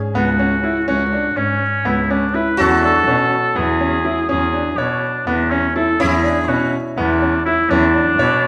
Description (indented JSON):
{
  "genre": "contemporary instrumental, chamber music in an uneven meter",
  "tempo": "246 BPM (eighths)",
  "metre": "7/8",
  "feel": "straight",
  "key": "unclear",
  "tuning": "A4 = 440 Hz",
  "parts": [
    { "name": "sitar", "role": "second line", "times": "0.0-8.5 s", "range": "E4 to G#4", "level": "-26 LUFS", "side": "equal", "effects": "none" },
    { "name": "clear grand piano", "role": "arpeggios", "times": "0.1-8.4 s", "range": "B3 to C#5", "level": "-23 LUFS", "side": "equal", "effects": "none" },
    { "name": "dark cello", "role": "bass", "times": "0.1-8.4 s", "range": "C#2 to B2", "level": "-22 LUFS", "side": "equal", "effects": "none" },
    { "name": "warm oboe", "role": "melody", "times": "0.2-8.5 s", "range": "C#4 to B4", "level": "-21 LUFS", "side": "equal", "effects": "none" }
  ],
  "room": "wet recital hall reverb, RT60 1.5 s",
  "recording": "none",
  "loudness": "-17 LUFS",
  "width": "mono",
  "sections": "0.0-8.5 A section",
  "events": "none",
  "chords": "0.0 C#sus4; 2.6 E7",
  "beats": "0.14 0.39 0.63 | 0.88 1.12 1.36 1.61 1.85 2.10 2.34 | 2.58 2.83 3.07 3.31 3.56 3.80 4.05 | 4.29 4.53 4.78 5.02 5.26 5.51 5.75 | 6.00 6.24 6.48 6.73 6.97 7.21 7.46 | 7.70 7.95 8.19 8.44"
}